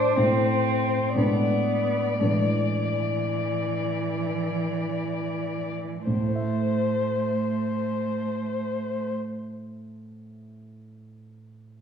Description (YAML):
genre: classical, slow romantic movement for piano trio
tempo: 40-64 BPM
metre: 4/4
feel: rubato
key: A minor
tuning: A4 = 440 Hz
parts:
  - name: muted violin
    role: melody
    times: 0.0-9.1 s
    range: C5 to D5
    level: -28 LUFS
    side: left 6 dB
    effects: none
  - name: muted cello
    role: second line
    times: 0.0-9.1 s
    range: E3 to D4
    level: -28 LUFS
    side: right 4 dB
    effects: none
  - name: warm concert grand piano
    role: accompaniment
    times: 0.0-11.8 s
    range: A2 to E5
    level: -29 LUFS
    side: right 1 dB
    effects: none
room: wet recital hall reverb, RT60 1.4 s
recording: heard from further back in the room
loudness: -23 LUFS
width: side -7 dB against mid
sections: 0.0-6.1 A section; 6.1-11.7 B section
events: slowing down 0.0-6.1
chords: 0.0 Am; 1.2 E7/A; 6.1 Am